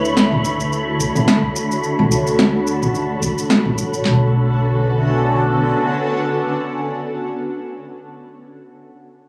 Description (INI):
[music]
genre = sunset chillout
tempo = 108 BPM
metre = 4/4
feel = swing 56% on 16ths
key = B minor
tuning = A4 = 439 Hz
[part]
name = shimmering ambient pad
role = sustained chords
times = 0.0-7.0 s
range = D3 to C#5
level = -22 LUFS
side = equal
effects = chorus, built-in reverb, phaser, vintage 12-bit sampler grit
[part]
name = upright bass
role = bass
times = 0.0-5.7 s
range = A1 to D2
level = -24 LUFS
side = equal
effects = none
[part]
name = deep house drum kit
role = drums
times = 0.0-4.0 s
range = shaker, snare drum, toms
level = -20 LUFS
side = equal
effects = overdrive
[part]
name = wind-like tuned noise texture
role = texture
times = 0.0-4.1 s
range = B5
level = -30 LUFS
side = equal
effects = built-in reverb
[part]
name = soft vintage rhythm box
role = drums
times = 0.6-4.2 s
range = handclaps, kick drum, snare drum, toms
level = -27 LUFS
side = equal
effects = none
[sound]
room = wet lush hall reverb, RT60 1.8 s, digital ambience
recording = recorded on a phone in the room, club reverb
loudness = -18 LUFS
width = mono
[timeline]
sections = 0.0-4.1 A section; 4.1-6.3 B section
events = filter sweep on upright bass 0.0-4.1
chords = 0.0 Dmaj7; 4.1 Bm9